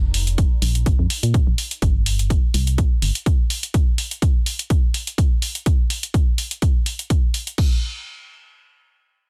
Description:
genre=piano house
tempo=125 BPM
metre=4/4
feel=swing 54% on 16ths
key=unclear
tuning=A4 = 439 Hz
part: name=organ-like FM bass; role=bass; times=0.0-3.1 s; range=F1 to Bb2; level=-22 LUFS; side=equal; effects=sidechain pumping
part: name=punchy analog drum machine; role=drums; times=0.1-7.7 s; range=crash cymbal, hi-hat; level=-28 LUFS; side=equal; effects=none
part: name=electronic kick drum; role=drums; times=0.4-7.7 s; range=none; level=-20 LUFS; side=equal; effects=none
room=little or no reverb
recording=dense, heavily limited modern master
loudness=-20 LUFS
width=mono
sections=0.0-7.6 A section; 7.6-9.3 B section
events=none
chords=none

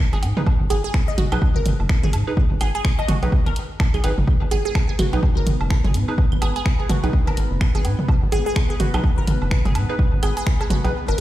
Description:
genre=minimal techno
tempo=126 BPM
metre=4/4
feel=swing 59% on 16ths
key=G# minor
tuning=A4 = 440 Hz
part: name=resonant blip pluck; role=riff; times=0.1-11.2 s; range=F#4 to D#5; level=-28 LUFS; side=right 1 dB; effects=phaser, sidechain pumping, ping-pong delay
part: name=rubbery square bass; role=bass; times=0.1-11.2 s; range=F#1 to G#2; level=-21 LUFS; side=equal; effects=sidechain pumping
part: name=punchy analog drum machine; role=drums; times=0.1-11.2 s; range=finger snaps, hi-hat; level=-31 LUFS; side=equal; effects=none
part: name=electronic woodblock, toms and claves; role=percussion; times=0.1-11.2 s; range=none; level=-28 LUFS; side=right 1 dB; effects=overdrive, ping-pong delay
part: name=wavetable chord stab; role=stabs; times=0.4-10.9 s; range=D#4 to B4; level=-31 LUFS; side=right 2 dB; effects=phaser, vintage 12-bit sampler grit, ping-pong delay
part: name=electronic kick drum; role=drums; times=0.5-10.6 s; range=none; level=-19 LUFS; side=equal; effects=none
part: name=bubbling stepped-filter texture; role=texture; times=4.6-11.2 s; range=B3 to B4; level=-32 LUFS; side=left 1 dB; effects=chorus, built-in reverb, sidechain pumping
room=little or no reverb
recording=played on a big sound system in a bare room, large studio reverb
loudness=-17 LUFS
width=side -14 dB against mid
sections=0.0-11.2 A section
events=break 10.9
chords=0.0 G#m

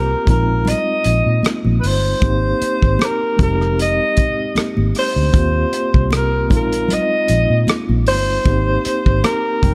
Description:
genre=lush 1970s-style soul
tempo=77 BPM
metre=4/4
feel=swing 54% on 16ths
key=unclear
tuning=A4 = 440 Hz
part: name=breathy alto saxophone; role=melody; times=0.0-9.7 s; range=Bb4 to Eb5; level=-22 LUFS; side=equal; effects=slapback echo
part: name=overdriven tine electric piano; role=accompaniment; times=0.0-9.7 s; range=Ab3 to G5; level=-25 LUFS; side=equal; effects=medium tremolo
part: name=vintage muted fingered electric bass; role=bass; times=0.0-9.7 s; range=F1 to Bb2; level=-20 LUFS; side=equal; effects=none
part: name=warm soul drum kit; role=drums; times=0.3-9.7 s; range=hi-hat, kick drum, rim click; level=-21 LUFS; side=equal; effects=none
part: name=congas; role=percussion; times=0.3-9.7 s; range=none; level=-27 LUFS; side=equal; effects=none
room=light reverb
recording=dark, warm production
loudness=-16 LUFS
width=mono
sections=0.0-9.7 A section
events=none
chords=0.3 Bb7sus4; 2.2 Abmaj9; 3.4 Fm7; 5.3 Eb69; 6.5 Bb7sus4; 8.5 Abmaj9

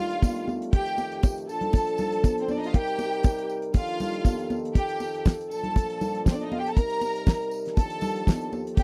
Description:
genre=disco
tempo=119 BPM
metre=4/4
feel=straight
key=unclear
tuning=A4 = 441 Hz
part: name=clear symphonic string section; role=second line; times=0.0-8.8 s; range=C4 to Bb5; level=-34 LUFS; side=equal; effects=none
part: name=warm French horn section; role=sustained chords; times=0.0-8.8 s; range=Eb2 to Bb4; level=-33 LUFS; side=equal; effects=none
part: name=damped 70s drum kit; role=drums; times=0.1-8.8 s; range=hi-hat, kick drum, snare drum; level=-23 LUFS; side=equal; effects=none
part: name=congas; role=percussion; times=0.2-8.8 s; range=none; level=-35 LUFS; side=equal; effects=none
part: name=tambourine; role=percussion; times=0.2-8.6 s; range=none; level=-51 LUFS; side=equal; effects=none
room=little or no reverb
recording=dry, close 1970s-style studio recording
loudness=-26 LUFS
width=mono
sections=0.0-8.8 A section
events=none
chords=0.0 Ebmaj9#11; 0.7 F9; 1.5 Bbmaj7; 2.7 Cm7; 3.7 Ebmaj9#11; 4.8 F9; 5.5 Bbmaj7; 6.8 Cm7; 7.8 Ebmaj9#11

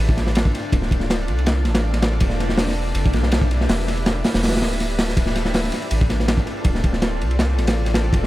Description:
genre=drum and bass, jungle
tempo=162 BPM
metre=4/4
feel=straight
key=D dorian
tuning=A4 = 440 Hz
part: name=soft dub sub bass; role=bass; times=0.0-8.3 s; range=D1 to C2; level=-22 LUFS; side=equal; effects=none
part: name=crunchy breakbeat drum kit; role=drums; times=0.1-8.3 s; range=hi-hat, kick drum, ride cymbal, snare drum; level=-20 LUFS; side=equal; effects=none
room=little or no reverb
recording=none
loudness=-17 LUFS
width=side -16 dB against mid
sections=0.0-8.3 A section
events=none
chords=none

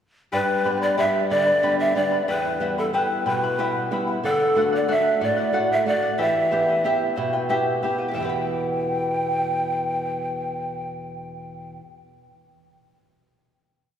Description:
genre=andean folk, Andean ensemble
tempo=61 BPM (dotted quarters)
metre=6/8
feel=straight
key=E minor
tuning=A4 = 440 Hz
part: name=breathy mellow large pan pipes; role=melody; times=0.3-11.8 s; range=A4 to G5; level=-23 LUFS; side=equal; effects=none
part: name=charango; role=accompaniment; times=0.3-12.0 s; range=E4 to B5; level=-26 LUFS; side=left 2 dB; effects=none
part: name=flamenco guitar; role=accompaniment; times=0.3-11.9 s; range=E2 to E5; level=-27 LUFS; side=right 1 dB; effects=none
room=wet church reverb, RT60 2.8 s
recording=recorded in a church or concert hall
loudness=-20 LUFS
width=side -9 dB against mid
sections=0.3-8.1 A section; 8.1-12.0 final chord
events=none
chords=0.3 G; 2.3 Em; 4.2 D; 6.2 Em

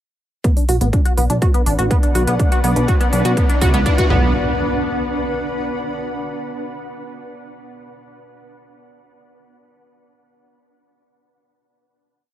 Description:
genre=melodic techno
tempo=123 BPM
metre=4/4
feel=straight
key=B minor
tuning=A4 = 436 Hz
part: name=deep dark ambient pad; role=sustained chords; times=1.1-4.3 s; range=B3 to F#5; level=-26 LUFS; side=left 1 dB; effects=chorus, built-in reverb, sidechain pumping
part: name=tight sequenced synth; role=arpeggios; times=0.4-4.3 s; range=B3 to F#4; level=-22 LUFS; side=equal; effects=chorus, sidechain pumping, dub echo
part: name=electronic hi-hat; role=drums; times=0.4-4.1 s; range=none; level=-28 LUFS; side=equal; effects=none
part: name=electronic kick drum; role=drums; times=0.4-4.2 s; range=none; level=-16 LUFS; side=equal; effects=none
part: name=riser and impact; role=sound effects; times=2.5-6.1 s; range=none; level=-28 LUFS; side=equal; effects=none
part: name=granular cloud pad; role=texture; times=1.6-6.3 s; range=D4 to B5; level=-26 LUFS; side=equal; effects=built-in reverb, sidechain pumping
part: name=plucky analog bass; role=bass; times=0.7-4.3 s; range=A1 to C#2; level=-18 LUFS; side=equal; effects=sidechain pumping
room=digital ambience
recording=none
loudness=-15 LUFS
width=side -12 dB against mid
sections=0.4-4.3 build; 4.3-6.3 final chord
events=build-up 0.4-4.3; filter sweep on synth arpeggio sound 0.4-4.3; riser 2.5-4.3; drum fill 2.4-4.3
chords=0.4 Bm

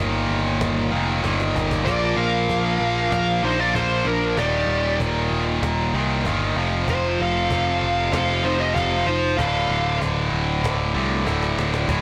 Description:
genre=heavy metal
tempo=96 BPM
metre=4/4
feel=straight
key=D phrygian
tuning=A4 = 440 Hz
part: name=heavy high-gain guitar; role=riff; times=0.0-12.0 s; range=D2 to Bb3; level=-25 LUFS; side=equal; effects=distortion
part: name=picked electric bass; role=bass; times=0.0-12.0 s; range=D1 to C2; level=-28 LUFS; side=equal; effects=none
part: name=cajon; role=drums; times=0.6-12.0 s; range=none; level=-31 LUFS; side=equal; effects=none
part: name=high-gain lead guitar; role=melody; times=1.9-10.0 s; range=Bb4 to F5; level=-26 LUFS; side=equal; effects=distortion, delay
part: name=high-gain lead guitar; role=second line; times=1.9-10.0 s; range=D4 to Bb4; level=-32 LUFS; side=equal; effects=distortion
room=little or no reverb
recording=blown-out, overdriven recording, overdrive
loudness=-21 LUFS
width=mono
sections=0.0-11.9 A section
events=half time 0.0-11.9; drum fill 1.2-1.9, 11.3-11.9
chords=0.0 Eb/G; 1.9 Bb5; 4.4 Eb; 6.6 F; 9.4 Dm

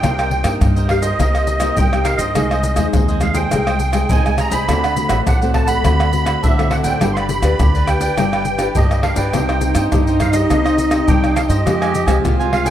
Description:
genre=samba and choro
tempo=103 BPM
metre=4/4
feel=straight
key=C minor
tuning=A4 = 441 Hz
part: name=musette accordion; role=melody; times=0.0-12.7 s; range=Eb5 to C6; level=-21 LUFS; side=right 3 dB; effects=ping-pong delay
part: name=cavaquinho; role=accompaniment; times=0.0-12.7 s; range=D4 to Ab5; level=-26 LUFS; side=right 5 dB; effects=none
part: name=nylon-string guitar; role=accompaniment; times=0.0-12.7 s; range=A2 to D5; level=-22 LUFS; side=left 3 dB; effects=ensemble chorus
part: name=upright bass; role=bass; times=0.0-12.7 s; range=G1 to D3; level=-20 LUFS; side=equal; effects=none
part: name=maracas, surdo, pandeiro and tamborim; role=percussion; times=0.0-12.7 s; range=none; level=-18 LUFS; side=left 1 dB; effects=none
part: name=dark cello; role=second line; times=9.3-12.7 s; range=Eb4 to G4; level=-19 LUFS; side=equal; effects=none
room=moderate plate reverb, RT60 2.9 s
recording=dreamy mix soaked in reverb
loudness=-14 LUFS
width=side -11 dB against mid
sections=0.0-12.7 A section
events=none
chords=0.0 Cm7; 2.4 Ab/C; 4.7 D7; 7.0 G; 9.3 Cmadd9; 11.7 Fmadd9

